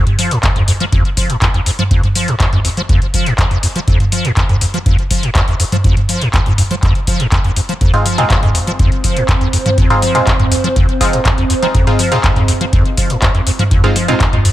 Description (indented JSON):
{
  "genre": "acid house",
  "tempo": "122 BPM",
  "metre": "4/4",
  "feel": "straight",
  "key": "F minor pentatonic",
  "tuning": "A4 = 441 Hz",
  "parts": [
    { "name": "acid bass, square", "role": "riff", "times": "0.0-14.5 s", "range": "F2 to F3", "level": "-15 LUFS", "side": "equal", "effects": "tube saturation, ensemble chorus, tape echo" },
    { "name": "booming analog drum machine", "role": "drums", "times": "0.1-14.5 s", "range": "handclaps, hi-hat, toms", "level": "-17 LUFS", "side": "equal", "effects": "small room ambience" },
    { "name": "electronic kick drum", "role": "drums", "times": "0.4-14.3 s", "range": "none", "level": "-15 LUFS", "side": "equal", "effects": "small room ambience" },
    { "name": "dark analog pad", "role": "sustained chords", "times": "8.6-14.5 s", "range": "C4 to C5", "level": "-20 LUFS", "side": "right 1 dB", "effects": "chorus, sidechain pumping" },
    { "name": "band-passed chord stab", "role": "stabs", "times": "7.9-14.2 s", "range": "Ab3 to F4", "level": "-19 LUFS", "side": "equal", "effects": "phaser, tape echo" }
  ],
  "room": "light reverb, digital ambience",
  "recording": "none",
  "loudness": "-11 LUFS",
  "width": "side -14 dB against mid",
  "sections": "0.0-14.5 A section",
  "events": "none",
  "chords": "0.0 Fm7"
}